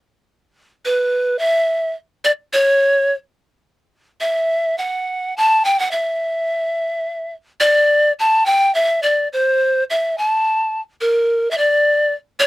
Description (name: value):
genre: andean folk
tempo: 71 BPM (dotted quarters)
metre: 6/8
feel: straight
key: unclear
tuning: A4 = 440 Hz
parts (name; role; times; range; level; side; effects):
- breathy reedy pan flute; solo; 0.9-12.5 s; Bb4 to A5; -15 LUFS; equal; none
room: light reverb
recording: none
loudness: -15 LUFS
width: side -18 dB against mid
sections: 0.0-11.0 A section; 11.0-12.5 A section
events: none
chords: none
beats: 0.00 | 0.84 1.68 | 2.52 3.37 | 4.21 5.06 | 5.90 6.75 | 7.60 8.45 | 9.29 10.14 | 10.99 11.84